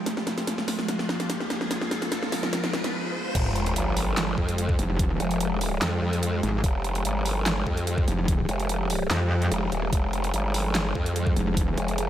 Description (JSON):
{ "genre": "heavy wobble dubstep", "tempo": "146 BPM", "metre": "4/4", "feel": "half-time", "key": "F minor", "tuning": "A4 = 441 Hz", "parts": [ { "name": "evolving wavetable pad", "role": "sustained chords", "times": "0.0-12.1 s", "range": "F3 to Ab4", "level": "-31 LUFS", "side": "equal", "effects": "ensemble chorus, built-in reverb, phaser, sidechain pumping" }, { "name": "riser and sub drop", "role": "sound effects", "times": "0.0-5.0 s", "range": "none", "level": "-34 LUFS", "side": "equal", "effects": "none" }, { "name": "dubstep drum kit", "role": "drums", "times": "0.1-12.1 s", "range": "crash cymbal, handclaps, hi-hat, snare drum", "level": "-30 LUFS", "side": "equal", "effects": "overdrive" }, { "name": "growl bass", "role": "bass", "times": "3.4-12.1 s", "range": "Eb1 to F2", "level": "-26 LUFS", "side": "equal", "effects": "chorus, overdrive" }, { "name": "electronic kick drum", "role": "drums", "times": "3.4-11.7 s", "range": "none", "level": "-25 LUFS", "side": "equal", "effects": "overdrive" }, { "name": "metallic wobble bass", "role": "bass", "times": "4.8-11.8 s", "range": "F1 to F2", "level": "-25 LUFS", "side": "equal", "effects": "distortion, chorus, overdrive" } ], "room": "light reverb", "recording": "none", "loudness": "-23 LUFS", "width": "side -12 dB against mid", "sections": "0.0-3.4 A section; 3.4-12.1 B section", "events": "build-up 0.0-3.4; drum fill 0.0-2.9; riser 0.0-3.4; filter sweep on ambient pad 0.0-3.4; break 2.9-3.4; drop 3.4-12.1; impact 3.4-5.0", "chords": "0.0 Fm; 3.4 Fmadd9" }